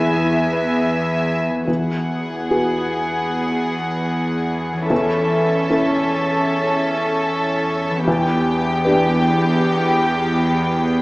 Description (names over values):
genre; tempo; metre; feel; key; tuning
cinematic; 69-78 BPM; 4/4; rubato; E major; A4 = 440 Hz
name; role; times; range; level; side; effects
warm French horn; melody; 0.0-0.8 s; E4; -26 LUFS; left 1 dB; none
warm studio violin section; melody; 0.0-11.0 s; E5 to G#5; -26 LUFS; equal; none
rich studio violin section; second line; 0.0-11.0 s; G4 to E5; -23 LUFS; equal; none
dark studio viola section; accompaniment; 0.0-11.0 s; B3 to C#4; -23 LUFS; equal; none
warm baby grand piano; accompaniment; 0.0-11.0 s; E2 to A4; -23 LUFS; equal; none
concert harp; arpeggios; 0.0-11.0 s; E3 to G#5; -26 LUFS; left 1 dB; none
warm studio cello section; bass; 0.0-11.0 s; E2; -24 LUFS; equal; none
room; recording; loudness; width
wet scoring stage reverb, RT60 1.6 s; small speaker sound; -16 LUFS; side -22 dB against mid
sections
0.0-1.7 A section; 1.7-11.0 B section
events
none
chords
0.0 E; 1.7 Eadd9; 4.9 A/E; 8.1 G/E